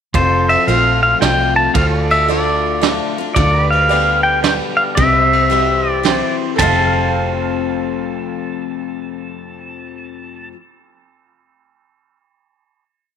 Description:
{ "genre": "honky-tonk and classic country", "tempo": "112 BPM", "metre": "3/4", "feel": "swing 65% on 8ths", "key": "F major", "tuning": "A4 = 441 Hz", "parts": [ { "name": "picked steel-string acoustic guitar", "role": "accompaniment", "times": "0.1-10.6 s", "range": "F2 to G4", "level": "-22 LUFS", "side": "left 14 dB", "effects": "none" }, { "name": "pedal steel guitar", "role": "sustained chords", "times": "0.1-10.5 s", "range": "F4 to F5", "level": "-24 LUFS", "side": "right 1 dB", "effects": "none" }, { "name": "vintage muted fingered electric bass", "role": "bass", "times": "0.1-10.5 s", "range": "F1 to D2", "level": "-20 LUFS", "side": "equal", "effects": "none" }, { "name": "soft brush drum kit", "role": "drums", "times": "0.1-6.8 s", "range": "kick drum, ride cymbal, snare drum, toms", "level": "-21 LUFS", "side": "right 6 dB", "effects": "none" }, { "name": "pedal steel guitar", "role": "melody", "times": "0.2-10.5 s", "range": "C5 to A5", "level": "-16 LUFS", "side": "equal", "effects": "none" }, { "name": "tack piano", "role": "accompaniment", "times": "0.7-10.5 s", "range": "F4 to G5", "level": "-25 LUFS", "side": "right 13 dB", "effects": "none" } ], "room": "light reverb, studio reverb", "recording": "1960s-style stereo with parts hard left and right", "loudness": "-13 LUFS", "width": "side -8 dB against mid", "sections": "0.1-6.6 verse; 6.6-9.8 final chord", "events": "none", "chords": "0.1 F; 1.8 Dm; 3.4 G/D; 5.0 C; 6.6 F", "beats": "| 0.14 0.68 1.22 | 1.75 2.29 2.83 | 3.37 3.90 4.44 | 4.98 5.52 6.06 | 6.59 7.13 7.67 | 8.21 8.75 9.28" }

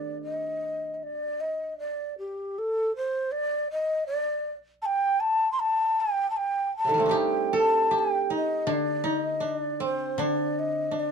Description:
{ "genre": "japanese traditional, Japanese chamber music", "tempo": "78 BPM", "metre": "2/4", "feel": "rubato", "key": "D in sen", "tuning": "A4 = 445 Hz", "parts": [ { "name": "breathy mellow shakuhachi", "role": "melody", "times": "0.0-11.1 s", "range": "G4 to C6", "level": "-26 LUFS", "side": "equal", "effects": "none" }, { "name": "koto", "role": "second line", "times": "0.0-1.8, 6.8-11.1 s", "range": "C3 to A4", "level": "-27 LUFS", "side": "right 3 dB", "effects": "none" }, { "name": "koto", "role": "accompaniment", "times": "0.0-1.0, 8.7-11.1 s", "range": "D3 to Eb3", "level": "-34 LUFS", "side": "left 4 dB", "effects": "none" } ], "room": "light reverb", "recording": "dark, warm production, faint mains hum", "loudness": "-24 LUFS", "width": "side -6 dB against mid", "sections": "1.0-11.1 A section", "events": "none", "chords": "none", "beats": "0.20 | 1.00 1.78 | 2.55 3.31 | 4.05 4.80 | 5.58 6.36 | 7.14 7.92 | 8.68 9.44 | 10.19 10.93" }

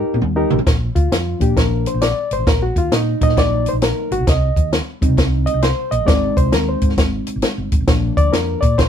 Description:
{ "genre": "uptempo 1960s-style soul", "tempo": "133 BPM", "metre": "4/4", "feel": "swing 65% on 8ths", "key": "Bb mixolydian", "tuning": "A4 = 438 Hz", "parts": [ { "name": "reed electric piano", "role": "accompaniment", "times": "0.0-8.9 s", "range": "F3 to Eb5", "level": "-20 LUFS", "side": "left 1 dB", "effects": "none" }, { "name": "hollow-body short-scale fingered electric bass", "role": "bass", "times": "0.0-8.9 s", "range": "G1 to C3", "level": "-20 LUFS", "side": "equal", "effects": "tube saturation" }, { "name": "compact cocktail drum kit", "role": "drums", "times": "0.1-8.9 s", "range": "hi-hat, kick drum, snare drum, toms", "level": "-17 LUFS", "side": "equal", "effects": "none" } ], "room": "light reverb", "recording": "band playing live in one room", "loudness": "-14 LUFS", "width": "side -8 dB against mid", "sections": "0.7-8.9 A section", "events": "drum fill 0.0-0.7; reed electric piano solo 0.7-8.9", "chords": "0.0 Eb; 0.7 Bb; 2.5 Ebm/Bb; 4.3 Cm; 6.1 Ab; 7.9 Bb", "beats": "0.22 | 0.67 1.12 1.57 2.02 | 2.47 2.92 3.38 3.83 | 4.28 4.73 5.18 5.63 | 6.08 6.53 6.98 7.43 | 7.88 8.33 8.78" }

